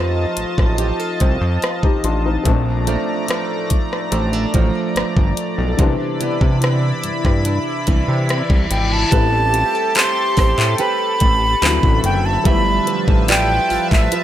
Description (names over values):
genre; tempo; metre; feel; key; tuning
contemporary R&B; 72 BPM; 4/4; straight; A minor; A4 = 442 Hz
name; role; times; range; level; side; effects
felt-muted upright piano; accompaniment; 0.0-14.2 s; D3 to G4; -27 LUFS; left 6 dB; none
chorused pulse-width pad; sustained chords; 0.0-14.2 s; F3 to B5; -23 LUFS; equal; none
flamenco guitar; arpeggios; 0.0-14.2 s; C3 to E5; -25 LUFS; right 6 dB; ping-pong delay
fat analog bass; bass; 0.0-14.1 s; F#1 to C3; -19 LUFS; equal; none
smooth R&B drum kit; drums; 0.4-14.2 s; handclaps, hi-hat, kick drum, rim click; -17 LUFS; equal; none
reverse cymbal; sound effects; 8.0-9.1 s; none; -27 LUFS; left 5 dB; none
breathy bright jazz flute; melody; 8.7-14.2 s; E5 to C6; -19 LUFS; right 1 dB; ping-pong delay
soft synth bell; texture; 10.0-14.2 s; D5 to A5; -31 LUFS; right 2 dB; none
room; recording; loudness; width
light reverb, digital ambience; none; -15 LUFS; side -12 dB against mid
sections
0.0-9.1 A section; 9.1-14.2 B section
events
reverse cymbal 8.0-9.1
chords
0.0 F7; 2.5 Bbmaj7; 5.8 Cmaj9; 9.1 Am9; 11.6 D13; 12.5 G13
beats
0.79 1.62 | 2.46 3.29 4.12 4.96 | 5.79 6.62 7.46 8.29 | 9.12 9.96 10.79 11.62 | 12.46 13.29 14.12